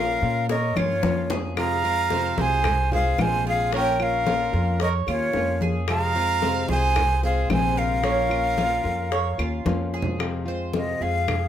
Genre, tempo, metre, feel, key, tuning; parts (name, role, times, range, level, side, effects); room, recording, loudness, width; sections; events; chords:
latin, Cuban son and guajira; 111 BPM; 4/4; straight; F minor; A4 = 440 Hz
breathy jazz flute; melody; 0.0-11.5 s; Db5 to Bb5; -24 LUFS; equal
brilliant trumpet; second line; 0.0-9.7 s; F4 to F5; -31 LUFS; right 4 dB
nylon-string guitar; accompaniment; 0.0-11.3 s; C3 to F4; -30 LUFS; left 3 dB
Cuban tres; arpeggios; 0.0-11.5 s; Db4 to Db5; -32 LUFS; right 4 dB
upright bass; bass; 0.0-11.5 s; Bb1 to Bb2; -27 LUFS; equal
bongos; percussion; 0.2-11.5 s; -32 LUFS; left 5 dB
congas; percussion; 0.2-11.5 s; -30 LUFS; left 2 dB
claves; percussion; 0.8-11.5 s; -34 LUFS; left 1 dB
moderate studio ambience, RT60 0.5 s; -21 LUFS; side -10 dB against mid
0.0-10.2 A section; 10.2-11.5 B section
drum fill 0.5-1.6, 9.7-10.2; flute solo 10.2-11.5
0.0 Bbm; 1.6 Fm; 3.7 Bbm; 5.9 Fm; 8.0 Bbm; 10.2 Fm